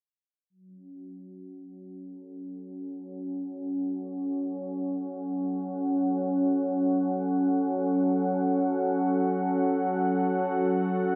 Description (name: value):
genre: ambient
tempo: free time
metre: none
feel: none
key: F# minor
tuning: A4 = 441 Hz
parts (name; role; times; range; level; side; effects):
- warm analog pad; sustained chords; 0.5-11.2 s; F#3 to F#5; -29 LUFS; equal; lush chorus
room: wet spring reverb, RT60 1.4 s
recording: dark, warm production, low-pass filter, nothing above 10.3 kHz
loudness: -28 LUFS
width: mono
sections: 0.5-11.2 A section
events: fade-in on analog synth pad 0.5-11.2; filter sweep 0.5-11.2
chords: 0.5 F#m